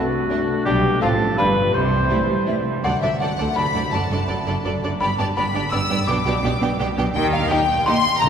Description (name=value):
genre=cinematic, playful, whimsical film cue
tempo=167 BPM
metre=3/4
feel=straight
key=D major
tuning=A4 = 439 Hz
part: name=rich studio violin section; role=melody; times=0.0-8.3 s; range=E5 to E6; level=-25 LUFS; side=left 4 dB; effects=none
part: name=trough xylophone with soft rubber mallets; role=melody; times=0.0-8.3 s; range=E5 to E6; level=-26 LUFS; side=left 2 dB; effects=none
part: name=mellow clarinet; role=second line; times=0.0-2.6 s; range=F#4 to C5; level=-30 LUFS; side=equal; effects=none
part: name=warm oboe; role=second line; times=0.0-2.6 s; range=F#4 to C5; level=-26 LUFS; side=equal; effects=none
part: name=mellow bassoon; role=accompaniment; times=0.0-2.6 s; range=F3 to A3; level=-33 LUFS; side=right 1 dB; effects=none
part: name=rich chamber viola section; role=accompaniment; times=0.0-8.0 s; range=F#3 to Eb4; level=-29 LUFS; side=right 1 dB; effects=none
part: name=mellow French horn section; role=sustained chords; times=0.0-2.7 s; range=E3 to G4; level=-30 LUFS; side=left 3 dB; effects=none
part: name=clear chamber violin section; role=second line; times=0.3-7.9 s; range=D4 to G5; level=-29 LUFS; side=equal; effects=none
part: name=silver concert flute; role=second line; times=0.3-2.5 s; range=D5 to F5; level=-34 LUFS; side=left 1 dB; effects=none
part: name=clear chamber cello section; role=bass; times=0.7-8.3 s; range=D2 to A3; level=-25 LUFS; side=right 2 dB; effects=none
part: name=rich studio double bass section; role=bass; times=0.7-8.3 s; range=F#1 to Eb2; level=-26 LUFS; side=right 2 dB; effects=none
room=wet cathedral reverb, RT60 6.6 s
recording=recorded in a church or concert hall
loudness=-18 LUFS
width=side -7 dB against mid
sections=0.0-2.8 A section; 2.8-8.3 B section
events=none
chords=0.0 D; 0.7 G/B; 1.0 F/A; 1.4 G7; 1.7 C; 2.8 D; 3.9 D/F#; 5.0 G; 6.1 G/B; 7.2 Eb